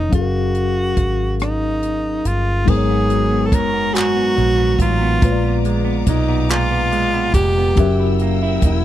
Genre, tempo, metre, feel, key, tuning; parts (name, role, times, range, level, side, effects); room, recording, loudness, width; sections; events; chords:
slow six-eight R&B; 47 BPM (dotted quarters); 6/8; straight; A4 = 440 Hz
breathy tenor saxophone; melody; 0.0-8.8 s; D#4 to A#4; -20 LUFS; equal
mellow tine electric piano; accompaniment; 0.0-8.8 s; A#2 to E#5; -23 LUFS; left 8 dB; medium stereo tremolo
vintage muted fingered electric bass; bass; 0.0-8.8 s; E1 to B1; -20 LUFS; right 1 dB
compact cocktail drum kit; drums; 0.1-8.8 s; crash cymbal, handclaps, hi-hat, kick drum, rim click; -17 LUFS; equal
semi-hollow electric guitar; second line; 2.7-8.8 s; G#2 to E4; -23 LUFS; right 10 dB; phaser
clear studio string section; sustained chords; 2.7-8.8 s; A#4 to E6; -32 LUFS; left 5 dB
little or no reverb; dry, close 1970s-style studio recording; -15 LUFS; side -12 dB against mid
0.0-2.7 A section; 2.7-8.8 B section
kick muted 1.4-2.7
0.1 F#maj9; 2.7 G#m11; 5.2 A#7b9; 7.8 F#7b9